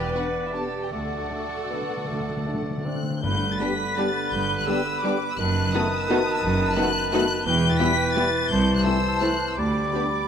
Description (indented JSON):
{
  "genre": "classical, orchestral ballroom waltz",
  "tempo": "147-190 BPM",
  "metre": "3/4",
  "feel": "rubato",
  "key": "G major",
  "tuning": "A4 = 440 Hz",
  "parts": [
    { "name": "rich studio violin section", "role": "melody", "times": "0.0-10.3 s", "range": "E5 to B6", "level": "-30 LUFS", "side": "left 5 dB", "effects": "none" },
    { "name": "clear oboe", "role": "second line", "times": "0.0-10.3 s", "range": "B4 to D5", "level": "-30 LUFS", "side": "right 1 dB", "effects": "none" },
    { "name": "large flute ensemble", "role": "second line", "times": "0.0-10.3 s", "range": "E5 to B5", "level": "-32 LUFS", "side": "equal", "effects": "none" },
    { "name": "rich studio violin section", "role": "second line", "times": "0.0-10.0 s", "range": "E4 to D5", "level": "-37 LUFS", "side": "left 3 dB", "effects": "none" },
    { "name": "rich studio viola section", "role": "accompaniment", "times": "0.0-10.0 s", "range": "G3 to B4", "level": "-32 LUFS", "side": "right 1 dB", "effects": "none" },
    { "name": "warm bassoon", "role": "accompaniment", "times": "0.0-10.3 s", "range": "D3 to C4", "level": "-31 LUFS", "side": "right 1 dB", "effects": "none" },
    { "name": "clear studio cello section", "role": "bass", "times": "0.0-9.9 s", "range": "C2 to G2", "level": "-28 LUFS", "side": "right 1 dB", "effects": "none" },
    { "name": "clear studio double bass section", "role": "bass", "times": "0.0-9.9 s", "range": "E1 to D2", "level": "-31 LUFS", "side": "right 2 dB", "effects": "none" },
    { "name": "warm French horn section", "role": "sustained chords", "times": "0.1-10.1 s", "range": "A3 to G4", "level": "-31 LUFS", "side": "left 4 dB", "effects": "none" },
    { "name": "timpani", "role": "percussion", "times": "0.9-3.7 s", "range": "G2 to D3", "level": "-32 LUFS", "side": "left 2 dB", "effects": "none" },
    { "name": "warm trombone section", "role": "sustained chords", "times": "3.6-10.1 s", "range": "D3 to B3", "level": "-34 LUFS", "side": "right 3 dB", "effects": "none" }
  ],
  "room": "moderate concert hall reverb, RT60 1.9 s",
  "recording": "none",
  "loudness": "-21 LUFS",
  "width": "side -8 dB against mid",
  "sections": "0.0-3.2 A section; 3.2-10.3 B section",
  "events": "timpani fill 0.9-3.2",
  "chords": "0.0 Em7; 0.9 D; 3.2 G; 5.4 B7/F#; 7.5 Em; 8.5 Am/C; 9.6 G/D"
}